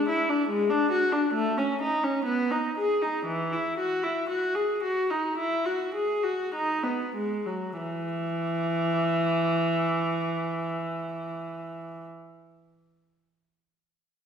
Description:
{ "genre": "classical, baroque-style suite movement for unaccompanied viola", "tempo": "48-71 BPM", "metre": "4/4", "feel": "rubato", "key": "E major", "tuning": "A4 = 440 Hz", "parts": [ { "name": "rich viola", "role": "solo", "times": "0.0-12.1 s", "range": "E3 to G#4", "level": "-25 LUFS", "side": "equal", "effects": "none" } ], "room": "wet recital hall reverb, RT60 1.5 s", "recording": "heard from further back in the room", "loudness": "-25 LUFS", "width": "side -7 dB against mid", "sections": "0.0-7.8 A section; 7.8-12.6 B section", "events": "slowing down 0.0-7.8", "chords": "none", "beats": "0.50 1.37 2.27 | 3.25 4.30 5.40 6.56 | 7.78 8.97 10.16 11.37" }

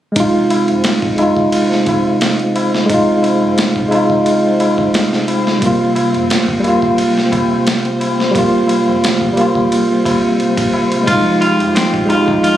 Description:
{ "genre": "trip hop", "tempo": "88 BPM", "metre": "4/4", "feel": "swing 53% on 16ths", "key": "F minor", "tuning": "A4 = 439 Hz", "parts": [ { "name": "bright tine electric piano", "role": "accompaniment", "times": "0.1-12.6 s", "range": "G3 to F4", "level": "-13 LUFS", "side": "right 1 dB", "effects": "tremolo, low-pass filter, tape echo" }, { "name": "string machine, cellos", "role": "sustained chords", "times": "0.1-12.6 s", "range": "F3 to C5", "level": "-21 LUFS", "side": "equal", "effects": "ensemble chorus" }, { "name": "dusty soul sampler-style drum kit", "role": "drums", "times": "0.2-12.6 s", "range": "kick drum, ride cymbal, snare drum", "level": "-20 LUFS", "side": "equal", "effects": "overdrive" }, { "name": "tabla", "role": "percussion", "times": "0.2-12.6 s", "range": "none", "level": "-24 LUFS", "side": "left 3 dB", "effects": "none" }, { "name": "semi-hollow electric guitar", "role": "arpeggios", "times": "11.1-12.6 s", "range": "C4 to F4", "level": "-16 LUFS", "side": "equal", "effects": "ping-pong delay" } ], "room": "light reverb", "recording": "recorded on a phone in the room, club reverb", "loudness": "-11 LUFS", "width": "side -11 dB against mid", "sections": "0.2-12.6 A section", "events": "none", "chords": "0.2 Fm7; 5.6 Gm7; 11.1 Fm7", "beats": "| 0.17 0.85 1.53 2.21 | 2.89 3.57 4.26 4.94 | 5.62 6.30 6.98 7.67 | 8.35 9.03 9.71 10.39 | 11.07 11.76 12.44" }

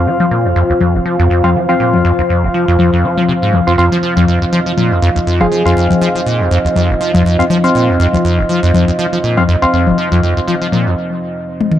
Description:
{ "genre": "acid house", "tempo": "121 BPM", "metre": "4/4", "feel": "swing 56% on 16ths", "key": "unclear", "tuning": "A4 = 440 Hz", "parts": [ { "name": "dark analog pad", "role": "sustained chords", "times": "0.0-11.8 s", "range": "F3 to F5", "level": "-20 LUFS", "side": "right 1 dB", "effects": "chorus" }, { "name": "liquid acid bass", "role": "riff", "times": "0.0-11.0 s", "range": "F1 to F3", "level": "-14 LUFS", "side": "right 1 dB", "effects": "tube saturation, lush chorus, cassette tape, dub echo" }, { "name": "percussive organ stab", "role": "stabs", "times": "0.0-11.0 s", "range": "C4 to F5", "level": "-18 LUFS", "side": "left 1 dB", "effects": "chorus, dub echo" }, { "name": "warbly tape-like pad", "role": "texture", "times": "0.0-11.0 s", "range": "F4 to F5", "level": "-20 LUFS", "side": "equal", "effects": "chorus, built-in reverb, phaser" }, { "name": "electronic congas and toms", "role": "drums", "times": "0.2-11.8 s", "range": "none", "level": "-17 LUFS", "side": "left 4 dB", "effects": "dub echo" }, { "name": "soft struck synth lead", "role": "melody", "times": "5.4-6.1 s", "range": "Ab4", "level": "-22 LUFS", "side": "right 1 dB", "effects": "chorus, dub echo" } ], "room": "light reverb", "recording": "echo-heavy mix", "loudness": "-10 LUFS", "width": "side -11 dB against mid", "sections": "0.0-11.8 A section", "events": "filter sweep on analog synth pad 0.0-11.8; break 11.0-11.8; drum fill 11.6", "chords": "0.0 F5", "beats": "| 0.06 0.56 1.05 1.55 | 2.05 2.54 3.04 3.53 | 4.03 4.53 5.02 5.52 | 6.01 6.51 7.00 7.50 | 8.00 8.49 8.99 9.48 | 9.98 10.48 10.97 11.47" }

